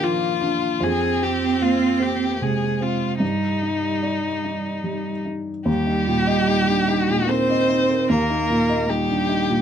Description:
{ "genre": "neoclassical piano and strings", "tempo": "75 BPM", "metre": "3/4", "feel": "rubato", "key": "unclear", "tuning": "A4 = 440 Hz", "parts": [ { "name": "rich violin", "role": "melody", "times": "0.0-9.6 s", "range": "Eb4 to C5", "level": "-23 LUFS", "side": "left 4 dB", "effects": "none" }, { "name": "clear cello", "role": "second line", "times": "0.0-9.6 s", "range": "G3 to C4", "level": "-24 LUFS", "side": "right 6 dB", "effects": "none" }, { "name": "felt-muted upright piano", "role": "accompaniment", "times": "0.0-9.6 s", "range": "Eb2 to Eb5", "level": "-23 LUFS", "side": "equal", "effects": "none" } ], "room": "light reverb", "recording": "close, detailed microphones", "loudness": "-19 LUFS", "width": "side -8 dB against mid", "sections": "0.0-5.7 A section; 5.7-9.6 B section", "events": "none", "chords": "0.0 Bb; 0.8 Fm; 3.2 Eb/G; 5.7 Eb" }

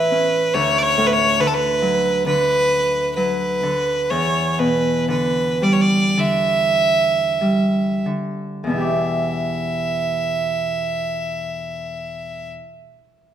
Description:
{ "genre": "celtic folk, Celtic slow air", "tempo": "44-71 BPM", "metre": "4/4", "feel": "rubato", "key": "E dorian", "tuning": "A4 = 440 Hz", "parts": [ { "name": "bright fiddle", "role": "melody", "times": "0.0-12.5 s", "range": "A4 to E5", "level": "-19 LUFS", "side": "right 2 dB", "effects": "none" }, { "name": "Celtic harp", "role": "accompaniment", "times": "0.0-12.6 s", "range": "D2 to D5", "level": "-21 LUFS", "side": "equal", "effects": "none" } ], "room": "wet recital hall reverb, RT60 1.4 s", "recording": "minimal, uncompressed stereo recording", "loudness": "-17 LUFS", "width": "side -10 dB against mid", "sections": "0.0-8.7 A section; 8.7-13.3 B section", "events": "slowing down 0.5-8.7", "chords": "0.0 A; 0.5 D; 4.1 Em7" }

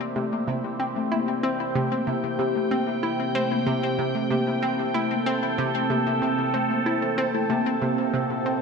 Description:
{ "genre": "ambient, sequencer-driven space music", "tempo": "94 BPM", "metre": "4/4", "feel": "straight", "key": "unclear", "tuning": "A4 = 440 Hz", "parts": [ { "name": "evolving wavetable pad", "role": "sustained chords", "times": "0.0-8.6 s", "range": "C3 to G5", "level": "-26 LUFS", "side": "right 2 dB", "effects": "phaser, built-in reverb, shimmer reverb" }, { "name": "Celtic harp", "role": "arpeggios", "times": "0.0-8.6 s", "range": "Bb2 to Bb4", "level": "-28 LUFS", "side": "left 2 dB", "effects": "auto-pan, ping-pong delay, shimmer reverb" }, { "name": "analog pluck", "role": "riff", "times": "0.2-8.6 s", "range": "C3 to E4", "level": "-28 LUFS", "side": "equal", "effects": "chorus, ping-pong delay, shimmer reverb" } ], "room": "wet plate reverb, RT60 2.9 s", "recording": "dreamy mix soaked in reverb", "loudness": "-22 LUFS", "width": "side -5 dB against mid", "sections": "0.0-8.6 A section", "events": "none", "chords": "0.0 C" }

